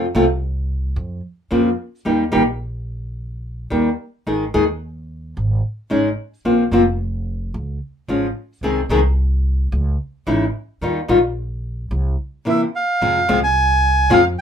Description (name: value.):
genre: tango.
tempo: 109 BPM.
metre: 4/4.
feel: rubato.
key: Ab major.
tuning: A4 = 445 Hz.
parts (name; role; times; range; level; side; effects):
nylon-string guitar; accompaniment; 0.0-14.2 s; C3 to Ab4; -16 LUFS; left 1 dB; none.
upright bass; bass; 0.0-14.3 s; F1 to F2; -22 LUFS; equal; none.
bandoneon; melody; 12.5-14.4 s; E5 to Ab5; -16 LUFS; right 2 dB; none.
room: light reverb.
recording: minimal, uncompressed stereo recording.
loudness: -17 LUFS.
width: side -8 dB against mid.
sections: 0.0-13.0 A section; 13.0-14.4 B section.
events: none.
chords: 0.0 F5; 1.0 Bbmadd9/F; 2.1 Eb; 4.3 Ab5; 5.4 Dbsus2/Ab; 6.5 Bbsus2; 7.5 Db; 8.6 Ab/C; 9.7 Dbmadd9; 10.8 Ebadd9; 11.9 C7; 13.0 Fm.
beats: 0.43 0.97 1.52 | 2.07 2.62 3.17 3.72 | 4.27 4.82 5.37 5.92 | 6.46 7.01 7.55 8.09 | 8.63 9.17 9.72 10.27 | 10.81 11.36 11.91 12.46 | 13.02 13.57 14.12.